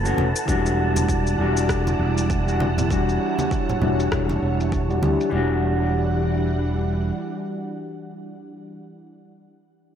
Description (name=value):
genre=sunset chillout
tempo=99 BPM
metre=4/4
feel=swing 58% on 16ths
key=E dorian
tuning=A4 = 440 Hz
part: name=mellow electric guitar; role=accompaniment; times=0.0-8.8 s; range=E3 to G4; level=-24 LUFS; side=left 2 dB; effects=auto-pan, low-pass filter, digital delay
part: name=soft string machine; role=sustained chords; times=0.0-8.5 s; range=E3 to F#5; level=-28 LUFS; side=right 1 dB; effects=ensemble chorus
part: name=fretless electric bass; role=bass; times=0.0-7.1 s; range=E1 to D2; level=-24 LUFS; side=equal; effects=tube saturation
part: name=wind-like tuned noise texture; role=texture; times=0.0-5.3 s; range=A5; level=-33 LUFS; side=equal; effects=built-in reverb
part: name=electronic shaker and rim click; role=drums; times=0.1-5.3 s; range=none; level=-32 LUFS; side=left 2 dB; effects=overdrive, low-pass filter on perc, studio reverb, low-pass filter on snare
part: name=congas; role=percussion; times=0.2-5.2 s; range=none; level=-29 LUFS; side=right 2 dB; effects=none
part: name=electronic kick drum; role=drums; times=0.5-4.9 s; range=none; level=-27 LUFS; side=equal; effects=overdrive, studio reverb
room=light reverb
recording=none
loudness=-20 LUFS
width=side -9 dB against mid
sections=0.0-5.3 A section; 5.3-7.7 B section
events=filter sweep on drum 0.0-5.3; filter sweep on clean electric guitar 0.0-5.3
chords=0.5 Em9